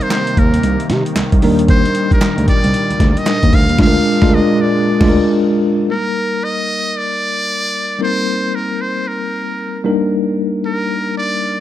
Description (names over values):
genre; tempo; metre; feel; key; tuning
R&B, new jack swing; 114 BPM; 4/4; swing 63% on 16ths; Eb major; A4 = 440 Hz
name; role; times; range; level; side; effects
trumpet with metal mute; melody; 0.0-11.6 s; Bb4 to F5; -20 LUFS; equal; none
bell-like tine electric piano; accompaniment; 0.0-11.6 s; G3 to Bb4; -17 LUFS; left 2 dB; medium stereo tremolo
brassy analog pad; sustained chords; 0.0-5.9 s; Bb2 to D4; -22 LUFS; right 1 dB; chorus
boom bap sampler-style drum kit; drums; 0.0-5.2 s; crash cymbal, handclaps, hi-hat, kick drum, snare drum; -15 LUFS; equal; none
group handclap; percussion; 0.1-3.4 s; none; -32 LUFS; right 5 dB; none
smooth gliding synth bass; bass; 0.4-5.2 s; C2 to C3; -16 LUFS; right 1 dB; none
room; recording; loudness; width
little or no reverb; none; -13 LUFS; side -12 dB against mid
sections
0.0-5.9 A section; 5.9-11.6 B section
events
band accent 3.8-5.9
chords
0.0 Cm7; 1.4 Ebmaj7; 3.8 Bb7/D; 5.9 Ebmaj7; 8.0 Cm7; 9.8 Ebmaj7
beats
0.11 0.63 1.16 | 1.69 2.21 2.74 3.27 | 3.79 4.32 4.84 5.37 | 5.90 6.42 6.95 7.47 | 8.00 8.53 9.05 9.58 | 10.11 10.63 11.16